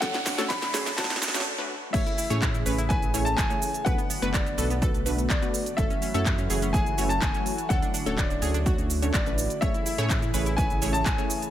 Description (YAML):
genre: progressive house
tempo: 125 BPM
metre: 4/4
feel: straight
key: A major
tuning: A4 = 441 Hz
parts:
  - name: clear concert grand piano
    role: melody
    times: 0.0-11.5 s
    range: D5 to B5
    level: -31 LUFS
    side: left 2 dB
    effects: digital delay
  - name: warm analog pad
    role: sustained chords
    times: 0.0-11.5 s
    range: C#3 to C#5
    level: -36 LUFS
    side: right 2 dB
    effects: chorus, sidechain pumping
  - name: analog pluck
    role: arpeggios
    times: 0.0-11.4 s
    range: B3 to C#5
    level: -35 LUFS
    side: equal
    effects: chorus, cassette tape, sidechain pumping, ping-pong delay
  - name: wide unison pluck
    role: stabs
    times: 0.0-11.4 s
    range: A3 to C#5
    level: -32 LUFS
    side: moving between left 5 dB and right 2 dB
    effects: auto-pan, sidechain pumping, ping-pong delay
  - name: round analog bass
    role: bass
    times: 0.0-11.2 s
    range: D1 to A2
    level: -30 LUFS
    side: equal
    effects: sidechain pumping, high-pass filter
  - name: electronic kick drum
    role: drums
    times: 0.0-11.2 s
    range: none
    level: -28 LUFS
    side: equal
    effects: overdrive
  - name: house drum kit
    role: drums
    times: 0.0-11.5 s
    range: crash cymbal, handclaps, hi-hat, shaker, snare drum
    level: -31 LUFS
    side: right 1 dB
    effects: none
  - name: riser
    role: sound effects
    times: 0.0-1.5 s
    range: none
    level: -32 LUFS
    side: right 3 dB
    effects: none
  - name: backwards swelling texture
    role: texture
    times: 0.7-1.5 s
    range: none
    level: barely audible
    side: none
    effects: none
room: light reverb, digital ambience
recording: high-pass filter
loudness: -23 LUFS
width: side -11 dB against mid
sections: 0.0-1.9 A section; 1.9-11.5 B section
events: build-up 0.0-1.9; drum fill 0.0-1.5; riser 0.0-1.5; break 1.5-1.9; drop 1.9-11.5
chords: 0.0 Dmaj7; 1.9 Amaj7; 3.9 Bm7; 5.8 F#m7; 7.7 Dmaj7; 9.6 Amaj7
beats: | 0.02 0.50 0.98 1.46 | 1.94 2.42 2.90 3.38 | 3.86 4.34 4.82 5.30 | 5.78 6.26 6.74 7.22 | 7.70 8.18 8.66 9.14 | 9.62 10.10 10.58 11.06